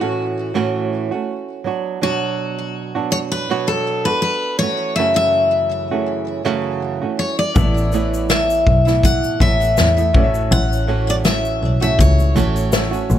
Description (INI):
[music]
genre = acoustic pop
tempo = 81 BPM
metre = 4/4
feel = swing 55% on 16ths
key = unclear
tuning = A4 = 440 Hz
[part]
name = picked steel-string acoustic guitar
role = melody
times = 0.0-13.1 s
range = F#4 to F#5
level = -20 LUFS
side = left 2 dB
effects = digital delay
[part]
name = flamenco guitar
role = accompaniment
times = 0.0-13.2 s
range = F#2 to F#4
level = -22 LUFS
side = right 6 dB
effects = none
[part]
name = clear concert grand piano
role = accompaniment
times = 7.5-13.2 s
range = B3 to E5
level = -31 LUFS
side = left 6 dB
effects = none
[part]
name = clear double bass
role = bass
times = 7.6-13.2 s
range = A1 to E2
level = -17 LUFS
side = left 1 dB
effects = none
[part]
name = unplugged drum kit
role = drums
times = 7.6-13.2 s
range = kick drum, shaker, snare drum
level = -18 LUFS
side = left 1 dB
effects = none
[sound]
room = studio reverb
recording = none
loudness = -15 LUFS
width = side -11 dB against mid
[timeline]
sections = 0.0-13.2 A section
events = none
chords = 0.0 F#m7/A; 1.7 Bm; 4.6 F#m7; 7.6 Asus2; 10.1 F#m7/A